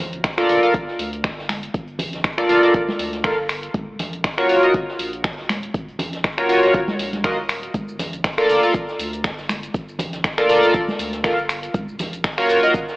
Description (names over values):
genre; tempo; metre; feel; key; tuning
deep house; 120 BPM; 4/4; swing 55% on 16ths; G minor; A4 = 440 Hz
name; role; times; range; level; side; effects
round analog bass; bass; 0.0-12.8 s; Eb1 to D2; -37 LUFS; equal; tube saturation, sidechain pumping
open jazz drum kit; drums; 0.0-13.0 s; hi-hat, snare drum; -35 LUFS; equal; high-pass filter on hats, high-pass filter on snare, high-pass filter on room
deep house drum kit; drums; 0.1-13.0 s; finger snaps, hi-hat, shaker; -25 LUFS; equal; none
electronic kick drum; drums; 0.2-12.9 s; none; -26 LUFS; equal; none
chorused polysynth; stabs; 0.4-12.7 s; F4 to F5; -17 LUFS; equal; sidechain pumping, analog delay
congas; percussion; 1.5-12.1 s; none; -29 LUFS; right 1 dB; none
room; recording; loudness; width
moderate lush hall reverb, RT60 2.0 s, small room ambience; dry, gritty hardware recording, cassette tape, AM radio sound; -18 LUFS; side -20 dB against mid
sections
0.0-13.0 A section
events
none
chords
0.0 Gm9; 3.7 Ebm9; 7.7 Gm9; 11.7 Ebm9